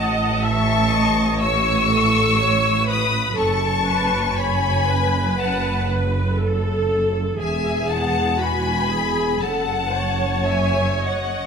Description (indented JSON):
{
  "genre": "classical, slow romantic movement for string orchestra",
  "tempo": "50-62 BPM",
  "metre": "4/4",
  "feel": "rubato",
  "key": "unclear",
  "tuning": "A4 = 441 Hz",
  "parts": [
    { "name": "rich symphonic violin section", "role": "melody", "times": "0.0-11.5 s", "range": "F#5 to E6", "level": "-24 LUFS", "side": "left 4 dB", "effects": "none" },
    { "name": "rich chamber violin section", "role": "second line", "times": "0.0-11.5 s", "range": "D#5 to C#6", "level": "-24 LUFS", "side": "left 6 dB", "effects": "none" },
    { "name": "clear symphonic viola section", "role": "accompaniment", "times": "0.0-11.5 s", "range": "F#4 to E5", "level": "-24 LUFS", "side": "right 1 dB", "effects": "none" },
    { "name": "clear symphonic double bass section", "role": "bass", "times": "0.0-11.5 s", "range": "E1 to A1", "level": "-25 LUFS", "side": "right 2 dB", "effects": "none" },
    { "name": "warm symphonic cello section", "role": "bass", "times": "0.0-11.5 s", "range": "E2 to A2", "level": "-24 LUFS", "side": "right 3 dB", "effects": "none" }
  ],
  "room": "moderate scoring stage reverb, RT60 1.6 s",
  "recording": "none",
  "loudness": "-17 LUFS",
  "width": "side -6 dB against mid",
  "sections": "0.0-11.5 A section",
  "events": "none",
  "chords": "0.0 F#m/A (rootless); 3.4 F#m; 7.4 Eadd9; 9.4 F#m13"
}